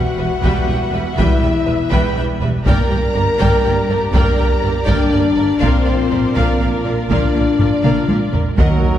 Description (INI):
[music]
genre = cinematic, epic orchestral film score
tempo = 81 BPM (dotted quarters)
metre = 6/8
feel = straight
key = unclear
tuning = A4 = 439 Hz
[part]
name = clear symphonic violin section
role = melody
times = 0.0-9.0 s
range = Bb4 to B5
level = -28 LUFS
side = left 2 dB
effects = none
[part]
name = dark French horn section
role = sustained chords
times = 0.0-9.0 s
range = Bb3 to B4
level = -19 LUFS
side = left 3 dB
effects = none
[part]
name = rich symphonic string section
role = sustained chords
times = 0.0-9.0 s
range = Gb3 to E5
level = -26 LUFS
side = equal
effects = none
[part]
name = clear symphonic double bass section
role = bass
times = 0.0-8.7 s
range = E1 to Eb2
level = -22 LUFS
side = right 2 dB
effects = none
[part]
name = rich symphonic violin section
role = second line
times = 0.2-8.8 s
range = Bb4 to G5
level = -27 LUFS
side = left 2 dB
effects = none
[part]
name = bright studio viola section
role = accompaniment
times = 0.2-8.8 s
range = G3 to B4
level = -26 LUFS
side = right 1 dB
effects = none
[part]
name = clear studio cello section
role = bass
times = 0.2-8.7 s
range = E2 to Eb3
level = -24 LUFS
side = right 3 dB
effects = none
[part]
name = taiko ensemble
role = drums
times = 0.4-9.0 s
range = none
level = -18 LUFS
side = equal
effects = none
[part]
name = dark trumpet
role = stabs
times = 8.6-9.0 s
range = Gb3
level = -21 LUFS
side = right 4 dB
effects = none
[part]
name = timpani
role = percussion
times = 8.6-9.0 s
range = Eb3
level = -20 LUFS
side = right 2 dB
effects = none
[sound]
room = wet scoring stage reverb, RT60 1.8 s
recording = heard from further back in the room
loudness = -13 LUFS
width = side -11 dB against mid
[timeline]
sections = 0.0-8.6 A section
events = drum fill 7.8-8.6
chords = 0.0 Em; 2.7 Gm; 5.6 Bb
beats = 0.43 | 1.17 1.91 | 2.65 3.39 | 4.13 4.88 | 5.62 6.36 | 7.10 7.84 | 8.58